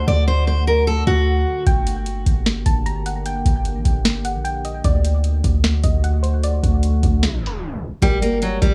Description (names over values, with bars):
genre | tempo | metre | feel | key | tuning
hip hop, trap | 151 BPM | 4/4 | half-time | G harmonic minor | A4 = 441 Hz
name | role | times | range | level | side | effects
picked steel-string acoustic guitar | melody | 0.0-1.6, 8.0-8.7 s | F#3 to D5 | -23 LUFS | equal | tape echo
soft round pluck | second line | 0.0-8.4 s | C5 to Bb5 | -32 LUFS | equal | chorus, tape echo
deep dark ambient pad | sustained chords | 0.0-8.7 s | D3 to G4 | -31 LUFS | equal | chorus, built-in reverb
warm 808-style bass | bass | 0.0-8.7 s | G1 to D2 | -22 LUFS | equal | none
booming analog drum machine | drums | 1.7-8.7 s | hi-hat, kick drum, snare drum | -20 LUFS | equal | none
reverse cymbal | sound effects | 7.3-8.0 s | none | -39 LUFS | equal | none
muted felt-like synth keys | accompaniment | 8.0-8.7 s | G3 to D5 | -30 LUFS | equal | chorus
room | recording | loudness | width
little or no reverb | tape stop, studio reverb, faint mains hum | -19 LUFS | mono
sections
0.0-8.0 A section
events
break 1.7-8.0; tape stop 7.2-8.0; reverse cymbal 7.4-8.0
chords
0.0 D; 1.7 Gm; 4.8 D; 8.0 Gm